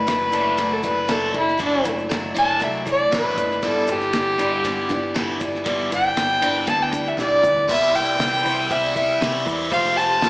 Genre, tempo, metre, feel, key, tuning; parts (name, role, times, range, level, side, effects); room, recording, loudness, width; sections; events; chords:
folk rock and heartland rock; 118 BPM; 4/4; straight; G major; A4 = 438 Hz
dark fiddle; melody; 0.0-10.3 s; D4 to A5; -20 LUFS; equal
picked acoustic archtop guitar; accompaniment; 0.0-10.3 s; G2 to G4; -27 LUFS; left 1 dB; slapback echo
biting overdriven guitar; riff; 0.0-10.3 s; F2 to F4; -26 LUFS; equal; phaser, slapback echo
hollow-body short-scale picked electric bass; bass; 0.0-10.3 s; F1 to C3; -34 LUFS; equal
cloth-damped thuddy drum kit; drums; 0.1-10.3 s; crash cymbal, hi-hat, kick drum, ride cymbal, snare drum, toms; -28 LUFS; equal
egg shaker; percussion; 0.1-10.3 s; -45 LUFS; equal
light reverb, small room ambience; live gig heard through the venue's PA, club reverb, small speaker sound; -18 LUFS; side -21 dB against mid
0.0-7.7 A section; 7.7-10.3 B section
fiddle solo 0.0-7.7; drum fill 7.2-7.7
0.0 Dadd9/F#; 3.6 G6; 7.7 Cmaj7; 9.7 Fadd9